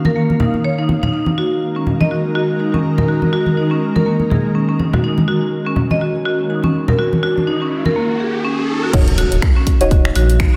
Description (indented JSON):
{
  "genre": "afro house",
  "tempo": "123 BPM",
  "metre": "4/4",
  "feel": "swing 58% on 16ths",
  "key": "unclear",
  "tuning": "A4 = 438 Hz",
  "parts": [
    { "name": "ethereal airy pad", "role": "sustained chords", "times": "0.0-10.6 s", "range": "Eb3 to F5", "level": "-23 LUFS", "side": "equal", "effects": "ensemble chorus, built-in reverb, sidechain pumping" },
    { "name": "congas", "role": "percussion", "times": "0.0-7.9 s", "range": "none", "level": "-21 LUFS", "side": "equal", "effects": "none" },
    { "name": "marimba with hard mallets", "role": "arpeggios", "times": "0.1-10.6 s", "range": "Bb3 to Eb5", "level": "-21 LUFS", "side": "equal", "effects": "vintage 12-bit sampler grit, sidechain pumping, delay" },
    { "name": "riser and impact", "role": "sound effects", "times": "6.3-10.6 s", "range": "none", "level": "-27 LUFS", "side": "equal", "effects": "none" },
    { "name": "deep mellow chord stab", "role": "stabs", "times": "8.9-10.6 s", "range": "Eb4 to Db5", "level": "-25 LUFS", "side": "equal", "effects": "chorus, sidechain pumping, delay" },
    { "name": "warm sub bass", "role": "bass", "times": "8.9-10.6 s", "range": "Eb1 to Bb1", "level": "-18 LUFS", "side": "equal", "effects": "sidechain pumping" },
    { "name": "electronic kick drum", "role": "drums", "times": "8.9-10.5 s", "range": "none", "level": "-16 LUFS", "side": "equal", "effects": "studio reverb" },
    { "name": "house drum kit", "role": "drums", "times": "8.9-10.5 s", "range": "crash cymbal, finger snaps, hi-hat, toms", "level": "-26 LUFS", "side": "equal", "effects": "studio reverb" }
  ],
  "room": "wet lush hall reverb, RT60 1.6 s",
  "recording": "dreamy mix soaked in reverb",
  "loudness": "-16 LUFS",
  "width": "mono",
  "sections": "0.0-8.9 A section; 8.9-10.6 B section",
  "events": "riser 6.3-8.9; drop 8.9-10.6; impact 8.9-10.6",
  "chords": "0.0 Eb5; 1.1 Ab5/Eb; 8.9 Ebm7"
}